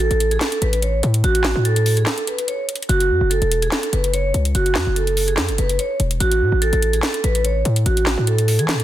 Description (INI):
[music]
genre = hip hop, trap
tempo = 145 BPM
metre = 4/4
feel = half-time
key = F# minor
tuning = A4 = 440 Hz
[part]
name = vibraphone with medium mallets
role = melody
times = 0.0-8.8 s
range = F#4 to C#5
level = -21 LUFS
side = right 2 dB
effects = low-pass filter
[part]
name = hard-hitting 808-style bass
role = bass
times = 0.0-8.8 s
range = E1 to E3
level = -19 LUFS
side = left 1 dB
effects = none
[part]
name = trap drum kit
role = drums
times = 0.0-8.8 s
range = handclaps, hi-hat, snare drum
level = -23 LUFS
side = equal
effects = none
[sound]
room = little or no reverb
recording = dense, heavily limited modern master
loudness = -16 LUFS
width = side -12 dB against mid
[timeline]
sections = 0.0-8.8 A section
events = break 2.1-2.9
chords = 0.0 N.C.; 2.9 F#5; 6.2 A5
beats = 0.00 0.41 0.82 | 1.24 1.65 2.07 2.48 | 2.89 3.31 3.72 4.13 | 4.55 4.96 5.38 5.79 | 6.20 6.62 7.03 7.45 | 7.86 8.27 8.69